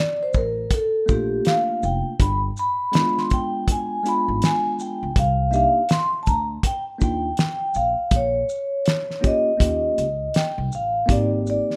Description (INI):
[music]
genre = hip hop, jazz-hop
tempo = 81 BPM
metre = 4/4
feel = swing 61% on 16ths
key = G minor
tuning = A4 = 441 Hz
[part]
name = vibraphone with soft mallets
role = melody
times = 0.0-11.8 s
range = G4 to C6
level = -24 LUFS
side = equal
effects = none
[part]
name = upright bass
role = bass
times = 0.3-11.6 s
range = F1 to Eb2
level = -28 LUFS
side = equal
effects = none
[part]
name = cloth-damped thuddy drum kit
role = drums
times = 0.3-11.8 s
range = hi-hat, kick drum, shaker, snare drum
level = -23 LUFS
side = equal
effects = none
[part]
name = bell-like tine electric piano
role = accompaniment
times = 1.1-11.8 s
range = Ab3 to G4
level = -29 LUFS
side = equal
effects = none
[sound]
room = light reverb, small room reverb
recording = rough home demo mix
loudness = -22 LUFS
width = mono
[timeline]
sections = 0.0-11.8 A section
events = none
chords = 0.0 Gm9; 2.2 G7b9; 5.2 Cm7; 8.1 Bbm; 9.6 Eb9; 11.1 Abmaj9